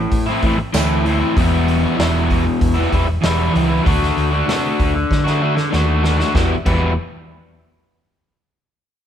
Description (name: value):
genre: garage rock duo or trio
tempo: 96 BPM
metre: 4/4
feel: straight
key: E minor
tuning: A4 = 440 Hz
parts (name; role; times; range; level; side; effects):
- crunchy overdriven guitar; riff; 0.0-6.9 s; E2 to F#4; -17 LUFS; left 1 dB; none
- picked electric bass; bass; 0.0-7.0 s; E1 to D3; -20 LUFS; equal; overdrive
- raw garage drum kit; drums; 0.1-6.8 s; crash cymbal, hi-hat, kick drum, snare drum; -21 LUFS; equal; none
- tambourine; percussion; 0.7-0.9 s; none; -30 LUFS; right 6 dB; none
room: moderate stone room reverb, RT60 1.4 s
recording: band playing live in one room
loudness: -14 LUFS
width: side -9 dB against mid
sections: 0.0-6.3 A section; 6.3-8.8 B section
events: drum fill 5.1-6.3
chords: 0.0 Am; 1.4 Em; 3.9 D; 6.3 Em